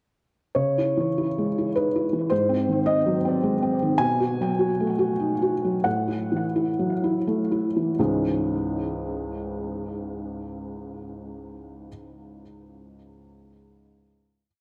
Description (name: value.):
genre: neoclassical minimalist piano.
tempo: 81-109 BPM.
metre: 3/4.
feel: rubato.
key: C# minor.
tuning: A4 = 439 Hz.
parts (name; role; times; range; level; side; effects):
felt-muted upright piano; solo; 0.5-14.5 s; C#2 to G#5; -25 LUFS; equal; tape echo.
room: moderate spring reverb, RT60 1.5 s, small room ambience.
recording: echo-heavy mix.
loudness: -24 LUFS.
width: mono.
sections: 0.5-8.0 A section; 8.0-12.3 final chord.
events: slowing down 3.1-8.0.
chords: 0.5 C#madd9; 2.3 G#7; 4.0 B7; 5.8 F#m7/A; 8.0 C#madd9.